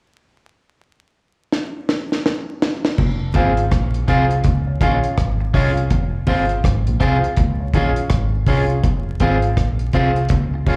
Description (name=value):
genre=roots reggae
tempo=82 BPM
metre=4/4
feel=swing 62% on 16ths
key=F minor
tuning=A4 = 441 Hz
part: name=deep reggae drum kit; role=drums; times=1.5-10.8 s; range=crash cymbal, hi-hat, kick drum, rim click, snare drum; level=-22 LUFS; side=equal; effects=vintage 12-bit sampler grit
part: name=deep dub fingered electric bass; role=bass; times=3.0-10.8 s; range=F1 to Db2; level=-22 LUFS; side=equal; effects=none
part: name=congas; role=percussion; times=3.0-10.8 s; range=none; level=-28 LUFS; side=equal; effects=none
part: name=warm concert grand piano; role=stabs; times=3.3-10.8 s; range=F4 to F5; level=-26 LUFS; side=equal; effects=slapback echo
part: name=electric guitar at the edge of break-up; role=accompaniment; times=3.4-10.8 s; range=C4 to Ab4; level=-26 LUFS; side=equal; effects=dub echo, slapback echo
room=light reverb, small room reverb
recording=live gig heard through the venue's PA, club reverb, vinyl crackle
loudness=-18 LUFS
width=mono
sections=0.1-3.0 A section; 3.0-8.8 B section; 8.8-10.8 C section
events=drum fill 1.5-3.0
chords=0.1 N.C.; 3.0 Fm; 4.4 Db; 5.9 Fm; 7.4 Db; 8.8 Fm